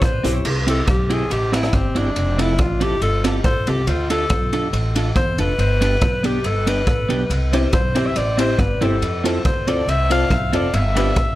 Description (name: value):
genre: ska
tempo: 140 BPM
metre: 4/4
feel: straight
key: C major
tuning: A4 = 439 Hz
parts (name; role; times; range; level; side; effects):
- bright alto saxophone; melody; 0.0-11.4 s; C4 to F5; -22 LUFS; left 1 dB; tape echo, plate reverb
- upright bass; bass; 0.0-11.4 s; F1 to F2; -22 LUFS; equal; none
- raw garage drum kit; drums; 0.0-11.3 s; crash cymbal, hi-hat, kick drum, ride cymbal, rim click; -22 LUFS; equal; tape echo
- clean electric guitar; accompaniment; 0.2-11.1 s; B3 to A4; -24 LUFS; right 2 dB; analog chorus, tape echo
- clear upright piano; stabs; 0.2-0.4, 7.5-11.2 s; B3 to C5; -26 LUFS; left 3 dB; tape echo, plate reverb
room: light reverb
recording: none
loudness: -16 LUFS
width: side -16 dB against mid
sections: 0.5-11.4 A section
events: alto saxophone solo 0.5-11.4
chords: 0.5 C; 2.2 F; 3.9 Dm; 5.6 G; 7.3 C; 9.0 F; 10.7 G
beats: 0.02 | 0.45 0.88 1.31 1.74 | 2.16 2.59 3.02 3.45 | 3.88 4.30 4.73 5.16 | 5.59 6.02 6.45 6.88 | 7.30 7.73 8.16 8.59 | 9.02 9.45 9.88 10.30 | 10.73 11.16